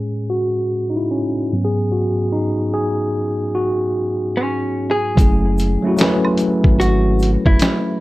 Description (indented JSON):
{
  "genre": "lo-fi hip hop",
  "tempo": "74 BPM",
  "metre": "4/4",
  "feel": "swing 65% on 16ths",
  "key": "F# minor",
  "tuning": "A4 = 438 Hz",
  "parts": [
    { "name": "tine electric piano", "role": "accompaniment", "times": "0.0-8.0 s", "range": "G#2 to B4", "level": "-18 LUFS", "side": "equal", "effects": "medium stereo tremolo, cassette tape, low-pass filter" },
    { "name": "archtop guitar, miked and amplified", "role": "melody", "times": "4.4-8.0 s", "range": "C#4 to G#4", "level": "-21 LUFS", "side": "equal", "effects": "low-pass filter" },
    { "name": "soft dub sub bass", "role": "bass", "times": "5.2-7.6 s", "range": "F#1 to G#1", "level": "-18 LUFS", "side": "equal", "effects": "none" },
    { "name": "dusty soul sampler-style drum kit", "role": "drums", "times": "5.2-7.9 s", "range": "hi-hat, kick drum, snare drum", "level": "-15 LUFS", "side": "equal", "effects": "none" },
    { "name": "egg shaker and woodblock", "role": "percussion", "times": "5.2-7.8 s", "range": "none", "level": "-30 LUFS", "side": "right 5 dB", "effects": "none" }
  ],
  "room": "light reverb",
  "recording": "cassette tape, low-pass filter",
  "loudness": "-15 LUFS",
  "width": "side -18 dB against mid",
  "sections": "0.0-5.2 A section; 5.2-8.0 B section",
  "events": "tine electric piano solo 0.0-5.2; filter sweep 0.0-5.2",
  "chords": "0.0 Amaj7; 1.5 G#m7; 5.2 F#m9"
}